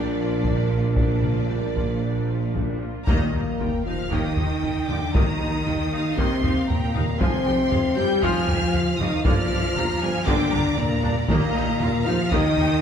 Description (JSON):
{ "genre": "cinematic, epic orchestral film score", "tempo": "117 BPM", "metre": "4/4", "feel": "straight", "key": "Eb major", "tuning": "A4 = 440 Hz", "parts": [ { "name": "rich symphonic violin section", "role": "melody", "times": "0.0-12.8 s", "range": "D5 to G6", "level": "-32 LUFS", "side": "equal", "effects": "none" }, { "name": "rich studio violin section", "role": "second line", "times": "0.0-12.8 s", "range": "D4 to Bb5", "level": "-33 LUFS", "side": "left 1 dB", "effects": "none" }, { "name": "clear symphonic viola section", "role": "accompaniment", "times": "0.0-12.7 s", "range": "D3 to Ab4", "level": "-32 LUFS", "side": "equal", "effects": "none" }, { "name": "mellow French horn section", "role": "sustained chords", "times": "0.0-12.8 s", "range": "Bb3 to Bb4", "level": "-26 LUFS", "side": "left 2 dB", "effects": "none" }, { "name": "clear symphonic cello section", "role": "bass", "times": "0.0-12.8 s", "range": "Bb2 to G3", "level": "-28 LUFS", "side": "right 2 dB", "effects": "none" }, { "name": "clear symphonic double bass section", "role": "bass", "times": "0.0-12.7 s", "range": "Bb1 to G2", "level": "-29 LUFS", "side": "right 3 dB", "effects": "none" }, { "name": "mellow tuba", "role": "bass", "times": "0.0-12.7 s", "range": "F1 to Eb2", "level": "-30 LUFS", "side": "right 2 dB", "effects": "none" }, { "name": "taiko ensemble", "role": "drums", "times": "0.4-12.8 s", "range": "none", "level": "-26 LUFS", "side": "equal", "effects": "none" }, { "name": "timpani", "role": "percussion", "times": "3.1-3.8, 11.3-12.0 s", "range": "Eb3", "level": "-33 LUFS", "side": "left 2 dB", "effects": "none" }, { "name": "sub drop", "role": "sound effects", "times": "3.2-5.1 s", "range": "none", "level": "-34 LUFS", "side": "left 1 dB", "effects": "none" } ], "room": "wet scoring stage reverb, RT60 1.8 s", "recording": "heard from further back in the room", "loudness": "-20 LUFS", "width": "side -8 dB against mid", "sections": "0.0-3.1 A section; 3.1-12.8 B section", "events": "band accent 3.1-3.6; impact 3.1-5.1", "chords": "0.0 Bb6; 3.1 Ebadd9; 7.2 Fmadd9; 9.3 Gm; 11.3 Ebadd9" }